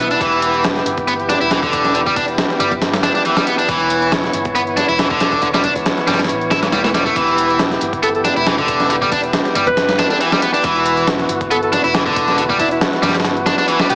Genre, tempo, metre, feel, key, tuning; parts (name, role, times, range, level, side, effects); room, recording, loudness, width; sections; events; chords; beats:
breakbeat, breaks; 138 BPM; 4/4; swing 54% on 16ths; E dorian; A4 = 439 Hz
overdriven tonewheel organ; sustained chords; 0.0-13.9 s; E3 to C#5; -20 LUFS; equal; sidechain pumping
biting overdriven guitar; riff; 0.0-13.9 s; D3 to E4; -16 LUFS; equal; vintage 12-bit sampler grit, tape echo
vintage muted fingered electric bass; bass; 0.0-13.9 s; E1 to B1; -31 LUFS; equal
dusty soul sampler-style drum kit; drums; 0.1-13.9 s; hi-hat, kick drum, snare drum; -19 LUFS; equal; overdrive
electronic hi-hat; drums; 0.1-13.9 s; -33 LUFS; equal
warm alto saxophone; melody; 8.0-13.9 s; E4 to B4; -20 LUFS; equal; AM radio sound, tape echo
wet lush hall reverb, RT60 1.9 s; heavily compressed radio sound, small speaker sound; -13 LUFS; side -28 dB against mid
0.0-13.9 A section
0.0 Em
| 0.21 0.64 1.08 1.51 | 1.95 2.38 2.82 3.25 | 3.69 4.12 4.55 4.99 | 5.42 5.86 6.29 6.73 | 7.16 7.60 8.03 8.47 | 8.90 9.34 9.77 10.21 | 10.64 11.08 11.51 11.95 | 12.38 12.82 13.25 13.69